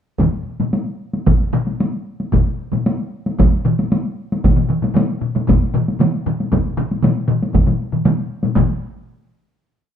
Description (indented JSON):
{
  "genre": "japanese traditional, taiko drum ensemble",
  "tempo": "115 BPM",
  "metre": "4/4",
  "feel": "straight",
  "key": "none",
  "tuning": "none",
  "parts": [
    { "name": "solo taiko drums", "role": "percussion", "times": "0.2-8.8 s", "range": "none", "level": "-20 LUFS", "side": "left 1 dB", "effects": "none" },
    { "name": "taiko ensemble", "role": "percussion", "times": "0.2-9.0 s", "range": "none", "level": "-22 LUFS", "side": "left 5 dB", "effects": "none" },
    { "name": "taiko ensemble", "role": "percussion", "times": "0.2-9.0 s", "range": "none", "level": "-22 LUFS", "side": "right 3 dB", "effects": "none" },
    { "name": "taiko ensemble", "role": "percussion", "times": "0.2-8.8 s", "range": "none", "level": "-17 LUFS", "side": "right 1 dB", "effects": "none" }
  ],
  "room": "moderate stone room reverb, RT60 1.1 s",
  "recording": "band playing live in one room",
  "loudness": "-16 LUFS",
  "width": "side -9 dB against mid",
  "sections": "0.2-8.6 A section; 8.6-10.0 final hit",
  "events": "speeding up 0.2-10.0",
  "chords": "none",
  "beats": "| 0.19 0.73 1.26 1.80 | 2.33 2.86 3.39 3.92 | 4.44 4.97 5.49 6.01 | 6.52 7.04 7.55 8.05 | 8.56"
}